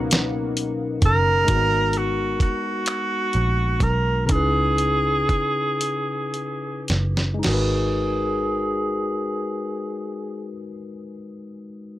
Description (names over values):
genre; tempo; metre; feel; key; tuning
slow six-eight R&B; 35-44 BPM (dotted quarters); 6/8; straight; G# minor; A4 = 440 Hz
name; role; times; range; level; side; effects
clear tenor saxophone; melody; 0.0-10.6 s; F#4 to A#4; -23 LUFS; right 2 dB; low-pass filter
barky tine electric piano; accompaniment; 0.0-12.0 s; B2 to B4; -27 LUFS; left 3 dB; overdrive, phaser, low-pass filter
warm analog pad; sustained chords; 0.0-1.5 s; A#3 to D#5; -33 LUFS; equal; chorus
vintage muted picked electric bass; bass; 0.0-10.6 s; F#1 to C#2; -24 LUFS; right 1 dB; none
dusty soul sampler-style drum kit; drums; 0.1-7.7 s; crash cymbal, finger snaps, hi-hat, kick drum, snare drum; -23 LUFS; equal; none
room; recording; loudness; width
light reverb; none; -20 LUFS; side -15 dB against mid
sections
0.0-1.5 A section; 1.5-7.4 B section; 7.4-10.8 C section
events
slowing down 1.5-7.4; filter sweep 1.5-7.4; drum fill 5.8-7.4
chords
0.0 Bmaj9; 1.5 G#m9; 4.3 C#m9; 7.4 G#m9